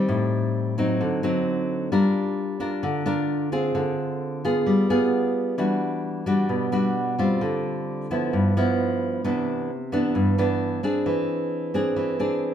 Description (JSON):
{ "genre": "bossa nova", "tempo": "131 BPM", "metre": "4/4", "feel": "straight", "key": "E minor from 5.6 s", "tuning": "A4 = 440 Hz", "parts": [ { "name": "nylon-string guitar", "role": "solo", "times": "0.0-12.5 s", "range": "G2 to Bb4", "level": "-22 LUFS", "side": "equal", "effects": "none" } ], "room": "moderate large studio reverb, RT60 1.2 s", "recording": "band playing live in one room", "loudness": "-22 LUFS", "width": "side -9 dB against mid", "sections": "0.0-5.6 A section; 5.6-12.5 A section", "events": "none", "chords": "0.1 Am7b5; 1.0 D7b9; 1.9 Gm7; 3.8 Dm7b5; 4.7 G7b9; 5.6 Em9; 7.4 Dm11; 8.3 G6; 9.2 Cmaj9; 11.1 Eaug7", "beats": "| 0.09 0.55 1.01 1.47 | 1.92 2.38 2.84 3.29 | 3.75 4.21 4.67 5.12 | 5.58 6.04 6.50 6.95 | 7.41 7.87 8.32 8.78 | 9.24 9.70 10.15 10.61 | 11.07 11.52 11.98 12.44" }